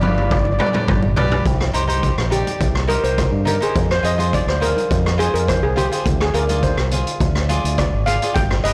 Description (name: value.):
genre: calypso.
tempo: 104 BPM.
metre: 4/4.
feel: straight.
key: C minor.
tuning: A4 = 440 Hz.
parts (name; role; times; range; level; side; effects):
steel pan; melody; 0.0-8.7 s; G4 to G5; -24 LUFS; equal; none.
cavaquinho; accompaniment; 0.0-8.7 s; D4 to F5; -27 LUFS; equal; none.
fingered electric bass with an envelope filter; bass; 0.0-8.7 s; G1 to G2; -23 LUFS; equal; none.
street-band drum kit; drums; 0.0-8.7 s; hi-hat, kick drum, rim click, toms; -23 LUFS; equal; none.
congas; percussion; 0.0-8.7 s; none; -33 LUFS; equal; none.
room: light reverb.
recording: blown-out, overdriven recording, overdrive.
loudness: -18 LUFS.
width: mono.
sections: 0.0-1.5 A section; 1.5-8.7 B section.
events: drum fill 0.0-1.5; steel pan solo 1.5-8.7.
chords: 0.0 G; 1.5 Cm; 3.8 Fm; 6.1 Ddim.